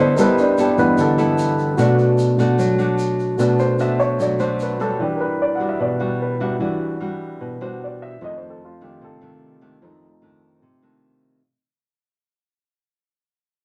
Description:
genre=bossa nova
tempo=149 BPM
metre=4/4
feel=straight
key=unclear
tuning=A4 = 440 Hz
part: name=nylon-string guitar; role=accompaniment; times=0.0-11.4 s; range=F2 to A4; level=-24 LUFS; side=equal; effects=none
part: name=warm concert grand piano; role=accompaniment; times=0.0-11.4 s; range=G2 to F#5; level=-21 LUFS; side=equal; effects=none
part: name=egg shaker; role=percussion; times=0.2-5.0 s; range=none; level=-43 LUFS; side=equal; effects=none
room=wet small room reverb, RT60 0.5 s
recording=none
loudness=-19 LUFS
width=mono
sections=0.0-11.4 A section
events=fade-out 0.0-11.4; grand piano solo 0.0-11.4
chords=0.0 G69; 1.8 Bm7; 5.0 Em9; 8.2 F6

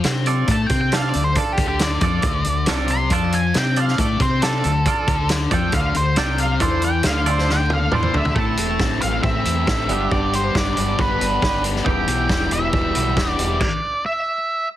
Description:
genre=indie rock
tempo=137 BPM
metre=4/4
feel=straight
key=D dorian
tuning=A4 = 440 Hz
part: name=thick fuzz guitar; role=riff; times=0.0-13.6 s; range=E2 to A4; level=-24 LUFS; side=left 7 dB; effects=distortion
part: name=deep dub fingered electric bass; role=bass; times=0.0-13.6 s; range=E1 to C3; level=-23 LUFS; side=equal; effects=none
part: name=loose indie drum kit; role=drums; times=0.0-13.7 s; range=crash cymbal, hi-hat, kick drum, snare drum, toms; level=-22 LUFS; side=equal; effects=none
part: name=twangy electric guitar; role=riff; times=0.3-13.6 s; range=E3 to D5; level=-27 LUFS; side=right 6 dB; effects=lush chorus
part: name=octave-fuzz lead guitar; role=melody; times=0.5-14.7 s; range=G4 to C6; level=-23 LUFS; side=right 1 dB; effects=distortion
room=light reverb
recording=heavily compressed radio sound, multiband compression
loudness=-17 LUFS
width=side -13 dB against mid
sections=0.0-8.4 A section; 8.4-14.8 B section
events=lead electric guitar solo 0.0-8.4; drum fill 7.5-8.4; stop 13.6-14.8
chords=0.0 Dm; 8.4 Am; 9.9 G; 11.9 Em; 13.6 N.C.

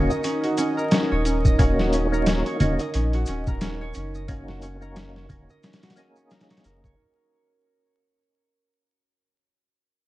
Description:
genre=trip hop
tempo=89 BPM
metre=4/4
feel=swing 58% on 16ths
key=Eb minor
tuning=A4 = 440 Hz
part: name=percussive tonewheel organ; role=accompaniment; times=0.0-7.0 s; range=Bb3 to Ab4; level=-28 LUFS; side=equal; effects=chorus vibrato, slow rotary speaker, tremolo, tape echo
part: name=dark analog pad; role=sustained chords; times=0.0-7.0 s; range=Eb4 to Eb5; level=-29 LUFS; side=right 1 dB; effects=chorus
part: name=concert harp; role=arpeggios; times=0.0-9.1 s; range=Db4 to Eb5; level=-28 LUFS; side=right 1 dB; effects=tape echo
part: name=warm sub bass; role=bass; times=0.0-7.0 s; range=Eb1 to Bb1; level=-27 LUFS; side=equal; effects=none
part: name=maracas and congas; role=percussion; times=0.1-7.0 s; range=none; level=-27 LUFS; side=right 1 dB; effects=none
part: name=trip hop sampler-style drum kit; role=drums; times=0.2-7.0 s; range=hi-hat, kick drum, snare drum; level=-24 LUFS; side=equal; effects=none
room=light reverb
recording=dark, warm production, vinyl crackle, nothing above 10.5 kHz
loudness=-20 LUFS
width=side -16 dB against mid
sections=0.0-7.0 A section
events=fade-out 0.0-7.0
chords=0.0 Ebm7

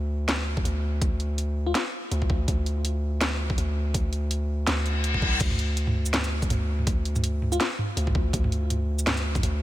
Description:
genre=half-time drum and bass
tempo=164 BPM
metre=4/4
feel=swing 57% on 16ths, half-time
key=unclear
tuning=A4 = 440 Hz
part: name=long sustained 808-style bass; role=bass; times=0.0-9.6 s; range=D2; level=-26 LUFS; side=equal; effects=none
part: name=drum and bass drum kit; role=drums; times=0.3-9.5 s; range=crash cymbal, hi-hat, shaker, snare drum, toms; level=-29 LUFS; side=equal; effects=overdrive
part: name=electronic kick drum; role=drums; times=0.6-9.4 s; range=none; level=-26 LUFS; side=equal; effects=overdrive
part: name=bell-like FM electric piano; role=melody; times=1.7-1.8, 7.5-7.7 s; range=F4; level=-34 LUFS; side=left 4 dB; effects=chorus, dub echo
part: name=reverse cymbal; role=sound effects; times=4.8-5.4 s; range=none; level=-30 LUFS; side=left 3 dB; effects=none
room=digital ambience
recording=none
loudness=-23 LUFS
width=side -15 dB against mid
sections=0.0-9.6 A section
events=reverse cymbal 4.8-5.4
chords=none

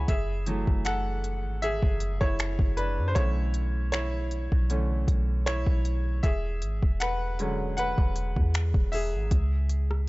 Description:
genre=contemporary R&B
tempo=78 BPM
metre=4/4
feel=swing 54% on 16ths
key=F# minor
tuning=A4 = 439 Hz
part: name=bright baby grand piano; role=accompaniment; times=0.0-10.1 s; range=C#3 to B5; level=-31 LUFS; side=equal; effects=none
part: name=soft 808-style bass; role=bass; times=0.0-10.1 s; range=E1 to F#2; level=-28 LUFS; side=equal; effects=none
part: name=smooth R&B drum kit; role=drums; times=0.1-10.1 s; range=finger snaps, hi-hat, kick drum, rim click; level=-26 LUFS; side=equal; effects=overdrive
room=little or no reverb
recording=dark, warm production, nothing above 7.8 kHz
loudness=-25 LUFS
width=side -21 dB against mid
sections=0.1-10.1 A section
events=grand piano solo 0.1-10.1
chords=0.1 F#m9; 3.2 Bm11; 6.2 E13; 9.3 C#m

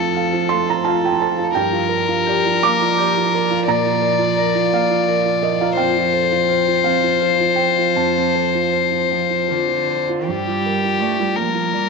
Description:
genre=neoclassical piano and strings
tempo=50-58 BPM (dotted quarters)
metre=6/8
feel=rubato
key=G minor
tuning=A4 = 440 Hz
part: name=rich violin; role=melody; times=0.0-11.9 s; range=G4 to D5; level=-18 LUFS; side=left 8 dB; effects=slapback echo
part: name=rich cello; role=second line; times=0.0-11.9 s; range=D3 to A3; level=-24 LUFS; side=right 11 dB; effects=none
part: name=felt-muted upright piano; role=accompaniment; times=0.0-11.9 s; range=F2 to D6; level=-21 LUFS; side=right 8 dB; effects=none
part: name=vibraphone with medium hard mallets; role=arpeggios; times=0.0-10.2 s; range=F4 to Bb5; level=-27 LUFS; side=left 9 dB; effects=slapback echo
room=wet plate reverb, RT60 3.0 s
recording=1960s-style stereo with parts hard left and right, nothing above 7.9 kHz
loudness=-15 LUFS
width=side -4 dB against mid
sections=0.0-10.3 A section; 10.3-11.9 B section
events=none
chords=0.0 F; 1.6 Gm7; 3.7 Bb; 5.8 F; 10.3 Gm7

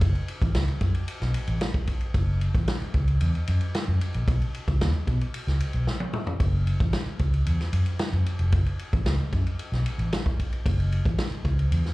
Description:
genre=funk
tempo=113 BPM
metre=4/4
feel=straight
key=F# dorian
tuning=A4 = 440 Hz
part: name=vintage muted fingered electric bass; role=bass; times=0.0-11.8 s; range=E#1 to B2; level=-24 LUFS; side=equal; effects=none
part: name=vintage drum kit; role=drums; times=0.0-11.9 s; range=kick drum, ride cymbal, snare drum, toms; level=-27 LUFS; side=equal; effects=none
room=little or no reverb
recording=live gig heard through the venue's PA, club reverb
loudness=-23 LUFS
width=side -20 dB against mid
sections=0.0-11.9 A section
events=drum fill 5.9-6.4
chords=none

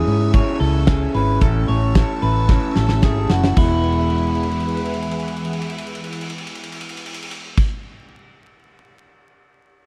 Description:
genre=jangly indie pop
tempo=111 BPM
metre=4/4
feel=straight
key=E major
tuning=A4 = 441 Hz
part: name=electric guitar through a small old amp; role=accompaniment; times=0.0-7.7 s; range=A2 to A4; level=-26 LUFS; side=equal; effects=spring reverb
part: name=phased string machine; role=sustained chords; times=0.0-7.6 s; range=E3 to E6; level=-34 LUFS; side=equal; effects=ensemble chorus, phaser
part: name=electric guitar through a small old amp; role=arpeggios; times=0.0-7.6 s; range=E4 to C#5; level=-28 LUFS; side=equal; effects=none
part: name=vintage muted fingered electric bass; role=bass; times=0.0-7.6 s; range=E1 to G#2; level=-22 LUFS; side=equal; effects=none
part: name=big rock drum kit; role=drums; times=0.1-7.7 s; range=crash cymbal, hi-hat, kick drum, ride cymbal, snare drum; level=-23 LUFS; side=equal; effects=none
room=little or no reverb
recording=dry, close 1970s-style studio recording, vinyl crackle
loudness=-19 LUFS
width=mono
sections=0.0-3.6 A section; 3.6-7.9 B section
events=drum fill 2.5-3.6, 3.8-7.6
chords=0.0 C#m; 1.4 A; 3.6 Eadd9

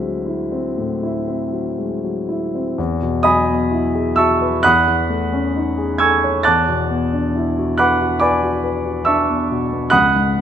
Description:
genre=classical, impressionist solo piano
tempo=57-71 BPM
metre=4/4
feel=rubato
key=unclear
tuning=A4 = 439 Hz
part: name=warm concert grand piano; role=solo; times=0.0-10.4 s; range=C#2 to A6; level=-15 LUFS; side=equal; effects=none
room=moderate recital hall reverb, RT60 1.8 s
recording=none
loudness=-15 LUFS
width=side -9 dB against mid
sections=0.0-2.8 A section; 2.8-10.4 B section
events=none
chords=0.0 D9; 2.8 Emaj9; 6.5 D69/E

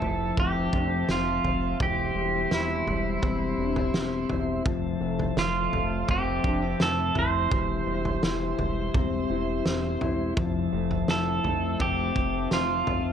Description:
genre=dream pop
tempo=84 BPM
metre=4/4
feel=straight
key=F major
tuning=A4 = 439 Hz
part: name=pedal steel guitar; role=melody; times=0.0-13.1 s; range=E4 to C5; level=-29 LUFS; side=right 4 dB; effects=tape echo
part: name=mellow tonewheel organ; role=sustained chords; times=0.0-13.1 s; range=F3 to C6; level=-33 LUFS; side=right 1 dB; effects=slow rotary speaker
part: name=electric guitar at the edge of break-up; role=arpeggios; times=0.0-13.1 s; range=E3 to E4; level=-30 LUFS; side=left 7 dB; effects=lush chorus, tape echo
part: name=chorused synth bass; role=bass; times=0.0-13.1 s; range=E1 to F1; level=-32 LUFS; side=right 1 dB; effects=none
part: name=loose indie drum kit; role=drums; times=0.0-13.0 s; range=kick drum, snare drum, toms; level=-30 LUFS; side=right 1 dB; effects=none
room=light reverb, small room ambience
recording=none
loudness=-24 LUFS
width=side -8 dB against mid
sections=0.0-13.1 A section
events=none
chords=0.0 Fmaj7; 1.8 C/E; 4.7 Fmaj7; 7.5 C/E; 10.4 Fmaj7

